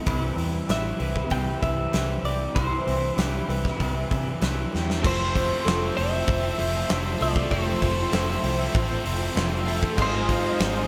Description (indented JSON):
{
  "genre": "rock, shoegaze and dream pop",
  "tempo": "97 BPM",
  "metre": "4/4",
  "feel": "straight",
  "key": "unclear",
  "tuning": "A4 = 440 Hz",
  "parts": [
    { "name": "fingerpicked twelve-string acoustic guitar", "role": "arpeggios", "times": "0.0-10.9 s", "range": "E4 to C5", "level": "-38 LUFS", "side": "equal", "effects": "analog chorus, slapback echo" },
    { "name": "overdriven electric guitar", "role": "riff", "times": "0.0-10.9 s", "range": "F2 to E4", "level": "-34 LUFS", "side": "equal", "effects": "lush chorus" },
    { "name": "twangy electric guitar", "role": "riff", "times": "0.0-10.9 s", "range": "C3 to C5", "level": "-34 LUFS", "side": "equal", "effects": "reverse reverb" },
    { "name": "vintage muted fingered electric bass", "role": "bass", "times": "0.1-10.8 s", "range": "F1 to C3", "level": "-31 LUFS", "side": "equal", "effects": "none" },
    { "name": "big rock drum kit", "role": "drums", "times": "0.1-10.7 s", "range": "crash cymbal, hi-hat, kick drum, snare drum", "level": "-30 LUFS", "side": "equal", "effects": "none" },
    { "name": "twelve-string electric guitar", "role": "melody", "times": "0.7-10.9 s", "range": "C5 to G5", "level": "-32 LUFS", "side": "equal", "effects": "slapback echo" },
    { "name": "phased analog pad", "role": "sustained chords", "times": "5.0-10.9 s", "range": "E5 to E6", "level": "-39 LUFS", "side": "equal", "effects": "phaser, chorus" },
    { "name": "tight distorted guitar", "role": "riff", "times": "5.0-10.9 s", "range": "Ab2 to F4", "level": "-36 LUFS", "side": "equal", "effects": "distortion" }
  ],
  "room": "wet small room ambience, RT60 0.5 s",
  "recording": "none",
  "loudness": "-25 LUFS",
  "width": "mono",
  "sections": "0.0-5.0 A section; 5.0-10.9 B section",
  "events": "drum fill 4.7-5.0",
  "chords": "0.1 Cmaj7; 5.0 Fmaj7; 10.0 Ab6"
}